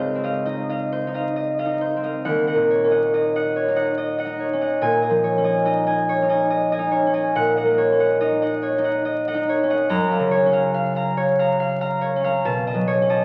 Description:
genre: classical, solo harp piece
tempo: 71 BPM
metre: 3/4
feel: rubato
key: unclear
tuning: A4 = 436 Hz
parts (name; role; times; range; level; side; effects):
- concert harp; solo; 0.0-13.2 s; Db2 to Bb5; -21 LUFS; equal; none
room: wet recital hall reverb, RT60 1.4 s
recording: very old 78 rpm record, vinyl crackle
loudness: -21 LUFS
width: mono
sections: 0.0-13.2 A section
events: none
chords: 0.0 Dbmaj9; 2.3 Ebm7; 4.8 Bbm7; 7.4 Ebm9/Bb; 9.9 Gbmaj7; 12.4 Cb9

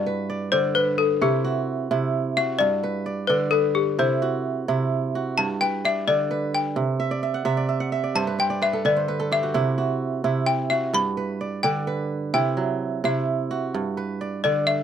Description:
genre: west african traditional, West African string and xylophone music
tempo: 86 BPM (dotted quarters)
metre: 12/8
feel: straight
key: C lydian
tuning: A4 = 444 Hz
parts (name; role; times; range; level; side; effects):
- balafon; melody; 0.0-14.8 s; G4 to B5; -23 LUFS; left 5 dB; none
- kora; arpeggios; 0.0-14.8 s; G2 to F#5; -24 LUFS; right 4 dB; none
room: light reverb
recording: dry, close 1970s-style studio recording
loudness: -21 LUFS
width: side -8 dB against mid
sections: 0.0-14.8 A section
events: balafon solo 0.0-14.8; kora fill 7.0-9.6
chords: 0.0 G; 1.2 C; 2.6 G; 4.0 C; 5.4 G; 6.8 Cadd9; 8.2 G5; 9.6 C; 10.9 G; 12.3 C; 13.7 G

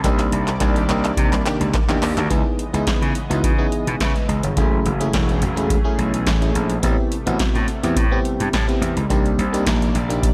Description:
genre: early-eighties boogie funk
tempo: 106 BPM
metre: 4/4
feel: straight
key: unclear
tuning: A4 = 440 Hz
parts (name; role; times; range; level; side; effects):
- FM electric piano; accompaniment; 0.0-10.3 s; A3 to E5; -26 LUFS; equal; chorus, slapback echo
- chorused pulse-width pad; sustained chords; 0.0-10.3 s; C3 to D#5; -32 LUFS; equal; none
- gritty slap bass; bass; 0.0-10.3 s; E1 to C#3; -24 LUFS; equal; overdrive, tube saturation
- electro analog drum machine; drums; 0.0-10.3 s; handclaps, hi-hat, kick drum, snare drum; -23 LUFS; equal; none
- analog synth brass; second line; 0.8-2.3 s; Eb3 to G4; -32 LUFS; equal; none
room: light reverb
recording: none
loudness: -20 LUFS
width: mono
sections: 0.0-2.3 A section; 2.3-10.3 B section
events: drum fill 0.0-2.3; band accent 0.0-2.3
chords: 0.0 Cm9; 2.3 C#m9; 4.6 F#m9; 6.8 Am9; 9.1 Cm9

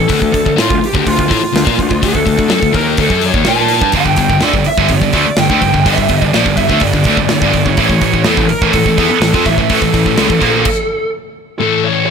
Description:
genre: heavy metal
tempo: 125 BPM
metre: 4/4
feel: straight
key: A phrygian dominant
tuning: A4 = 439 Hz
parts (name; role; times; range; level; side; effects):
- bluesy overdriven lead guitar; melody; 0.0-12.1 s; F4 to A5; -16 LUFS; right 1 dB; distortion, digital delay
- sludgy distorted guitar; riff; 0.0-12.1 s; G2 to Bb4; -16 LUFS; left 12 dB; overdrive
- fuzz picked electric bass; bass; 0.0-10.6 s; G1 to Bb2; -18 LUFS; right 1 dB; overdrive
- big rock drum kit; drums; 0.1-10.8 s; crash cymbal, hi-hat, kick drum, snare drum; -17 LUFS; equal; none
- scooped high-gain guitar; riff; 3.9-10.6 s; G2 to C4; -15 LUFS; right 12 dB; distortion
room: light reverb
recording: none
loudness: -10 LUFS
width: side -6 dB against mid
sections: 0.0-11.6 A section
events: stop 10.7-11.6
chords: 0.1 D5; 3.9 G5; 7.8 A5

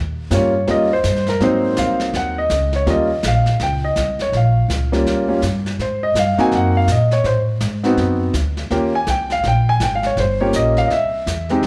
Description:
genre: jazz piano trio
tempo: 164 BPM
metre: 4/4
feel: swing 63% on 8ths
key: Eb mixolydian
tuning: A4 = 440 Hz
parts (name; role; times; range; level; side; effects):
- upright bass; bass; 0.0-11.7 s; G1 to Bb2; -22 LUFS; equal; none
- clear concert grand piano; melody; 0.3-11.7 s; Gb3 to Ab5; -20 LUFS; equal; none
- vintage brush drum kit; drums; 0.3-11.7 s; brushed snare drum, hi-hat, snare drum; -30 LUFS; equal; none
room: moderate large studio reverb, RT60 1.4 s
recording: band playing live in one room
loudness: -18 LUFS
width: mono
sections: 0.0-11.7 A section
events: none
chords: 0.0 Eb7; 1.4 Ab7; 2.9 Eb7; 4.3 Bbm; 5.1 Eb7; 5.8 Ab7; 7.2 Adim7; 8.7 Eb7; 10.2 Gm7b5; 10.9 C

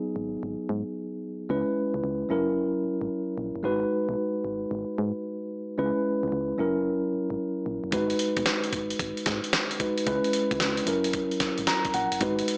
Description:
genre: R&B, new jack swing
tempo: 112 BPM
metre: 4/4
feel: swing 66% on 16ths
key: G# minor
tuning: A4 = 443 Hz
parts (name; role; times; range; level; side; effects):
- mellow tine electric piano; accompaniment; 0.0-12.6 s; F#3 to A#5; -29 LUFS; equal; none
- solid FM bass; bass; 0.2-12.4 s; F#1 to G#2; -37 LUFS; equal; none
- dusty soul sampler-style drum kit; drums; 7.9-12.6 s; hi-hat, kick drum, snare drum; -31 LUFS; equal; gated reverb
room: light reverb, digital ambience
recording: small speaker sound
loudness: -28 LUFS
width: mono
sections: 0.0-12.6 A section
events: tine electric piano fill 11.4-12.2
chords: 0.0 G#m7; 1.5 C#m7; 2.3 F#7; 3.6 G#m7; 5.8 C#m7; 6.6 F#7; 7.9 G#m7; 10.1 C#m7; 10.9 F#7

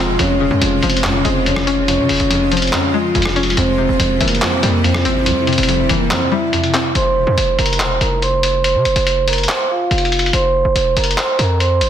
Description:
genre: hip hop, trap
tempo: 142 BPM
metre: 4/4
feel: half-time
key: F harmonic minor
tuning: A4 = 442 Hz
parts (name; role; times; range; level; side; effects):
- vibraphone with soft mallets; melody; 0.0-11.9 s; F3 to C6; -17 LUFS; right 2 dB; low-pass filter, tape echo
- string-like resonator pluck; accompaniment; 0.0-7.0 s; F2 to Db4; -21 LUFS; left 2 dB; chorus, low-pass filter
- granular cloud pad; sustained chords; 0.0-6.9 s; C3 to F4; -23 LUFS; equal; built-in reverb
- distorted 808-style bass; bass; 0.0-11.9 s; E1 to C3; -19 LUFS; equal; distortion
- lo-fi sampler-style drum kit; drums; 0.2-11.9 s; handclaps, hi-hat, rim click; -19 LUFS; left 1 dB; soft clipping on snare
room: light reverb, digital ambience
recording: dense, heavily limited modern master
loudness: -13 LUFS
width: side -9 dB against mid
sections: 0.0-7.0 A section; 7.0-11.9 B section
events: kick muted 6.1-7.0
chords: 0.2 Db; 3.6 C; 7.0 F5

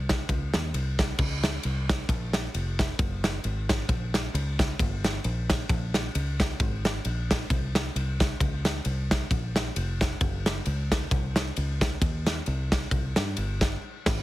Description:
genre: uptempo gospel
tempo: 133 BPM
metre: 4/4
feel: swing 56% on 8ths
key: Db major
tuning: A4 = 443 Hz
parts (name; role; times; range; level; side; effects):
- fingered electric bass; bass; 0.0-14.2 s; F1 to G2; -30 LUFS; equal; none
- modern studio drum kit; drums; 0.1-14.2 s; crash cymbal, kick drum, ride cymbal, snare drum; -27 LUFS; equal; none
room: little or no reverb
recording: heavily compressed radio sound, multiband compression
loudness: -25 LUFS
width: side -16 dB against mid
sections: 0.0-1.2 A section; 1.2-14.2 A section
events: band accent 13.8-14.2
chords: none

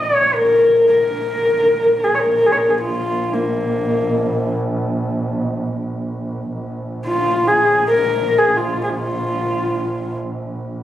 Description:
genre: mongolian traditional, Mongolian folk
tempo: free time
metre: none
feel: none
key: Bb yu mode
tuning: A4 = 440 Hz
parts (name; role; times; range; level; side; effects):
- dark horsehead fiddle; melody; 0.0-10.2 s; Bb3 to Db5; -15 LUFS; left 1 dB; none
- warm double bass; drone; 0.0-10.8 s; Bb1; -24 LUFS; right 1 dB; none
room: moderate recital hall reverb, RT60 1.4 s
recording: recorded on a phone in the room, club reverb, compression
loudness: -15 LUFS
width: side -12 dB against mid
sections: 0.0-6.5 A section; 6.5-10.8 A section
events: none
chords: none

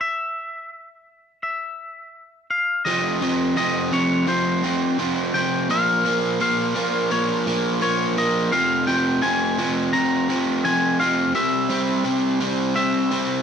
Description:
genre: rock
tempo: 85 BPM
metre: 4/4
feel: straight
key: F minor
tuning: A4 = 441 Hz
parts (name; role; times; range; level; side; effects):
- twangy electric guitar; melody; 0.0-13.4 s; C5 to Bb5; -24 LUFS; left 2 dB; slapback echo
- biting overdriven guitar; riff; 2.9-13.4 s; F2 to C4; -20 LUFS; right 1 dB; spring reverb
room: moderate echo chamber reverb, RT60 1.6 s, digital ambience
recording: none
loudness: -19 LUFS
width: side -7 dB against mid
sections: 0.0-2.9 A section; 2.9-13.4 B section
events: none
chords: 0.0 N.C.; 2.9 F5; 5.7 Bbm; 8.5 Fm; 11.4 C

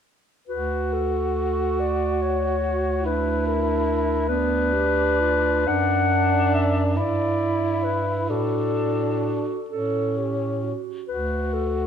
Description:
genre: classical, lyrical piece for single-reed quartet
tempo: 41-50 BPM (dotted quarters)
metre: 6/8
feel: rubato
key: D major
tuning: A4 = 441 Hz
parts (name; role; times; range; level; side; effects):
- mellow clarinet; melody; 0.5-11.9 s; A4 to F#5; -25 LUFS; left 4 dB; none
- mellow clarinet; second line; 0.5-11.1 s; B3 to A4; -28 LUFS; right 12 dB; none
- warm tenor saxophone; accompaniment; 0.5-11.9 s; C#4 to F#4; -26 LUFS; left 2 dB; none
- warm bass clarinet; bass; 0.5-11.9 s; D2 to A2; -26 LUFS; right 2 dB; none
room: moderate recital hall reverb, RT60 1.6 s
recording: none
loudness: -21 LUFS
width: side -8 dB against mid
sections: 0.5-11.9 A section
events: none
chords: 0.5 D; 3.1 Dsus2; 5.7 D/F#; 7.0 Em7/G; 8.3 D/A; 9.7 A; 11.1 D

